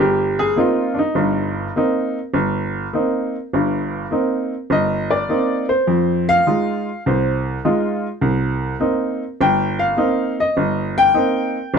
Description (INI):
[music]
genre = solo jazz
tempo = 102 BPM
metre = 4/4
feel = swing 68% on 8ths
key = C minor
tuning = A4 = 440 Hz
[part]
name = clear upright piano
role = solo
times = 0.0-11.8 s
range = G1 to G5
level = -17 LUFS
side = equal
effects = none
[sound]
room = light reverb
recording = dark, warm production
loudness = -17 LUFS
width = side -6 dB against mid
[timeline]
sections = 0.0-11.8 A section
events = upright piano solo 0.0-11.8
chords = 0.0 Cm7; 5.9 Fm7; 8.2 Cm7